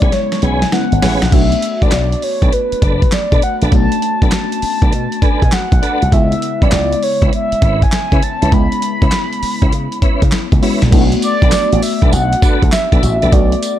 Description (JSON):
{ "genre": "R&B, new jack swing", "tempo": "100 BPM", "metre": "4/4", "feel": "swing 66% on 16ths", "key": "B dorian", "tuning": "A4 = 440 Hz", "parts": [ { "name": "mellow horn-like synth lead", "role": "melody", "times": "0.0-13.8 s", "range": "B4 to B5", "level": "-18 LUFS", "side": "equal", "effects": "chorus" }, { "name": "FM electric piano with soft pad layer", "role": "accompaniment", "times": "0.0-13.8 s", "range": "C#3 to F#4", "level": "-20 LUFS", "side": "left 2 dB", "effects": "chorus, phaser" }, { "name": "tonewheel organ", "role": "stabs", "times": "0.0-13.3 s", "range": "C#4 to B4", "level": "-23 LUFS", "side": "right 1 dB", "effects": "chorus vibrato, fast rotary speaker" }, { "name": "slap bass with an envelope filter", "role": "bass", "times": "0.0-13.5 s", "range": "F#1 to C#3", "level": "-16 LUFS", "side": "equal", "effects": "none" }, { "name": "dusty soul sampler-style drum kit", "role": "drums", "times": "0.0-13.8 s", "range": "crash cymbal, handclaps, hi-hat, kick drum, snare drum, tambourine", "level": "-14 LUFS", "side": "equal", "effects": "none" } ], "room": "digital ambience", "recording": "dark, warm production", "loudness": "-11 LUFS", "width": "side -11 dB against mid", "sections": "0.0-1.3 A section; 1.3-10.9 B section; 10.9-13.8 C section", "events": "drum fill 0.1-1.3", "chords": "0.0 Amaj9 (rootless); 1.3 Bm7; 6.1 C#m7; 10.9 Bm7", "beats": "0.12 0.72 | 1.32 1.92 2.52 3.12 | 3.72 4.32 4.92 5.52 | 6.12 6.72 7.32 7.92 | 8.52 9.12 9.72 10.32 | 10.92 11.52 12.12 12.72 | 13.32" }